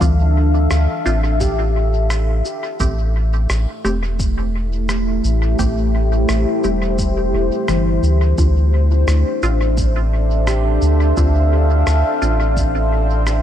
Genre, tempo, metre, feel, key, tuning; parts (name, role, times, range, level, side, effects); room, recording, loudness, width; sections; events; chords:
ambient dub; 86 BPM; 4/4; swing 53% on 16ths; D minor; A4 = 440 Hz
deep dark ambient pad; sustained chords; 0.0-13.4 s; A3 to F5; -21 LUFS; left 1 dB; chorus, built-in reverb
handpan; arpeggios; 0.0-12.3 s; E3 to G4; -28 LUFS; left 2 dB; tape echo
filtered dub chord stab; stabs; 0.0-12.5 s; A3 to G4; -27 LUFS; right 2 dB; phaser, dub echo
soft dub sub bass; bass; 0.0-13.4 s; E1 to D2; -16 LUFS; equal
electronic cabasa and rim click; drums; 0.0-13.4 s; -29 LUFS; equal; small room ambience, dub echo
electronic kick drum; drums; 0.0-12.7 s; -22 LUFS; equal; small room ambience
bubbling stepped-filter texture; texture; 8.9-13.4 s; C4 to C5; -32 LUFS; equal; chorus, built-in reverb
light reverb; -14 LUFS; side -10 dB against mid
0.0-13.4 A section
0.0 Dm7; 2.8 Am7; 8.4 Dm7